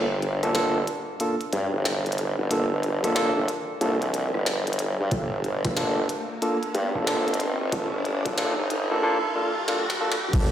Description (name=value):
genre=glitch hop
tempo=92 BPM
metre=4/4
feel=swing 63% on 16ths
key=G minor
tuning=A4 = 438 Hz
part: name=barky tine electric piano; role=stabs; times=0.0-10.5 s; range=Bb3 to A4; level=-27 LUFS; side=equal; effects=sidechain pumping, dub echo
part: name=formant-sweep wobble bass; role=bass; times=0.0-10.5 s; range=G1 to G2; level=-26 LUFS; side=equal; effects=chorus, overdrive, high-pass filter
part: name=riser and swell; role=sound effects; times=0.0-10.3 s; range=none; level=-34 LUFS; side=equal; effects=none
part: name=glitchy drum kit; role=drums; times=0.2-10.5 s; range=crash cymbal, hi-hat, rim click, snare drum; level=-30 LUFS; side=equal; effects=high-pass filter on hats, high-pass filter on snare, high-pass filter on cymbals, high-pass filter on room
part: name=electronic kick drum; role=drums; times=5.1-10.5 s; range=none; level=-26 LUFS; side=equal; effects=none
room=moderate plate reverb, RT60 2.6 s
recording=played on a big sound system in a bare room, large studio reverb, high-pass filter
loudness=-23 LUFS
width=side -10 dB against mid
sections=0.0-10.3 A section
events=build-up 0.0-10.3; riser 0.0-10.3; swell 9.0-10.3; drum fill 9.7-10.3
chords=0.0 Gm9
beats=0.55 1.21 1.86 | 2.51 3.16 3.81 4.47 | 5.12 5.77 6.42 7.08 | 7.73 8.38 9.03 9.68 | 10.34